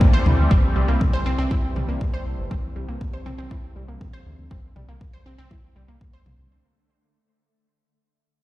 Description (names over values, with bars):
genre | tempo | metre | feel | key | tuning
melodic techno | 120 BPM | 4/4 | straight | unclear | A4 = 440 Hz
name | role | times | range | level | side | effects
sweeping resonant pad | sustained chords | 0.0-6.5 s | E3 to C4 | -30 LUFS | left 1 dB | chorus, sidechain pumping
round analog bass | bass | 0.0-6.5 s | G1 to D2 | -24 LUFS | equal | sidechain pumping
swarming drone | drone | 0.0-6.6 s | D3 to A3 | -35 LUFS | left 1 dB | built-in reverb, phaser, sidechain pumping
electronic kick drum | drums | 0.0-6.1 s | none | -20 LUFS | equal | none
wide unison pluck | arpeggios | 0.1-6.2 s | G3 to C5 | -31 LUFS | equal | sidechain pumping, dub echo
electronic toms | drums | 0.3-6.4 s | none | -30 LUFS | left 2 dB | none
room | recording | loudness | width
digital ambience | played on a big sound system in a bare room, stone room reverb | -19 LUFS | side -17 dB against mid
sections
0.0-6.5 A section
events
fade-out 0.0-6.5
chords
0.0 C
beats
0.01 | 0.51 1.01 1.51 2.01 | 2.51 3.01 3.51 4.01 | 4.51 5.01 5.51 6.01